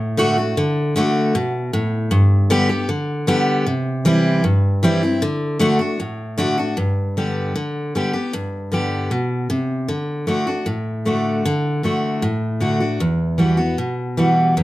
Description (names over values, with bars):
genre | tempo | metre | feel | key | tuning
country | 154 BPM | 4/4 | straight | G major | A4 = 440 Hz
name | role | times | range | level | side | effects
picked steel-string acoustic guitar | solo | 0.0-14.6 s | E2 to G4 | -17 LUFS | equal | none
room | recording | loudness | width
light reverb | close, detailed microphones | -17 LUFS | side -16 dB against mid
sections
0.0-6.8 A section; 6.8-14.6 B section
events
none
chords
0.0 D; 2.1 G; 3.7 C; 5.2 D; 6.8 G; 9.9 D; 13.0 Emadd9